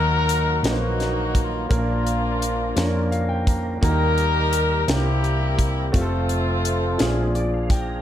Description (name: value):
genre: slow gospel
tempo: 57 BPM (dotted quarters)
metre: 6/8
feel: straight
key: Bb major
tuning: A4 = 440 Hz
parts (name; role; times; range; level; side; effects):
- warm horn section; melody; 0.0-7.4 s; A3 to Bb4; -24 LUFS; left 2 dB; none
- clear baby grand piano; accompaniment; 0.0-8.0 s; Bb2 to Bb5; -27 LUFS; left 1 dB; none
- percussive tonewheel organ; sustained chords; 0.0-8.0 s; F3 to Bb5; -31 LUFS; right 3 dB; slow rotary speaker, overdrive, chorus vibrato
- hollow-body short-scale fingered electric bass; bass; 0.0-8.0 s; F1 to F2; -23 LUFS; equal; none
- tight funk drum kit; drums; 0.3-7.9 s; hi-hat, kick drum, snare drum; -24 LUFS; equal; none
room: moderate large studio reverb, RT60 1.1 s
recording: none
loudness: -19 LUFS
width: side -11 dB against mid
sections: 0.0-8.0 A section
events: grand piano fill 2.8-3.8, 7.0-8.0; tonewheel organ fill 7.0-8.0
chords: 0.0 Ebm; 1.7 Bb; 3.8 Eb; 4.9 C7; 5.9 F; 7.0 Bb7